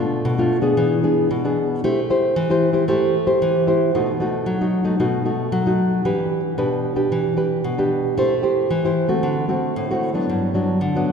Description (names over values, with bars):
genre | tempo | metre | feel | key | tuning
samba | 114 BPM | 4/4 | straight | unclear | A4 = 440 Hz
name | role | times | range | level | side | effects
nylon-string guitar | solo | 0.0-11.1 s | G2 to C5 | -17 LUFS | equal | none
room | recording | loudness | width
wet church reverb, RT60 2.7 s | recorded in a church or concert hall | -17 LUFS | side -6 dB against mid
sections
0.0-11.1 A section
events
none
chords
0.0 Bm7b5; 0.8 E7; 1.8 Am7; 4.0 B7; 6.1 Em7; 8.2 Am7; 9.2 D7; 10.3 Gmaj7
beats
0.26 0.78 1.31 | 1.84 2.37 2.90 3.42 | 3.95 4.48 5.01 5.53 | 6.06 6.59 7.12 7.64 | 8.17 8.70 9.23 9.76 | 10.29 10.82